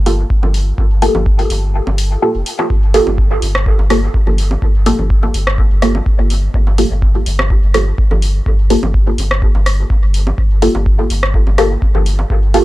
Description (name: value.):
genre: dub techno.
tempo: 125 BPM.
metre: 4/4.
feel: swing 53% on 16ths.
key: G minor.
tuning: A4 = 440 Hz.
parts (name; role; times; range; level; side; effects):
filtered dub chord stab; stabs; 0.0-12.6 s; Bb3 to A4; -17 LUFS; equal; phaser, cassette tape, sidechain pumping, dub echo.
pure sine sub bass; bass; 0.0-12.6 s; F1 to G1; -16 LUFS; equal; sidechain pumping.
deep house drum kit; drums; 0.1-12.6 s; hi-hat, rim click; -20 LUFS; equal; dub echo.
electronic kick drum; drums; 0.3-12.4 s; none; -14 LUFS; equal; overdrive.
bongos and congas; percussion; 0.4-12.3 s; none; -27 LUFS; right 1 dB; overdrive, sidechain pumping on perc, dub echo.
room: little or no reverb.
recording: dry, gritty hardware recording, cassette tape.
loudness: -11 LUFS.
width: side -17 dB against mid.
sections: 0.0-2.7 A section; 2.7-12.6 A section.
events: filter sweep on synth stab 0.0-2.7; break 1.7-2.7.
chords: 0.0 Gm9.